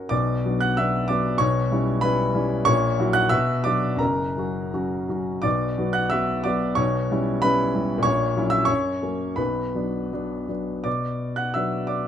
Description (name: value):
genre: classical, romantic character piece for solo piano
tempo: 79-99 BPM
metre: 2/4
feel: rubato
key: B minor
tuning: A4 = 441 Hz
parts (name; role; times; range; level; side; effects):
- warm baby grand piano; solo; 0.0-12.1 s; F#1 to F#6; -21 LUFS; equal; none
room: moderate large studio reverb, RT60 1.4 s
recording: close, detailed microphones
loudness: -21 LUFS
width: side -9 dB against mid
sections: 0.1-10.9 A section; 10.9-12.1 B section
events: none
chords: 0.1 Bm; 1.4 C#m7b5/B; 2.7 F#7/A#; 3.3 Bm; 4.0 F#; 5.4 Bm; 6.8 C#m7b5/B; 8.1 F#7/A#; 8.7 F#; 9.4 Bm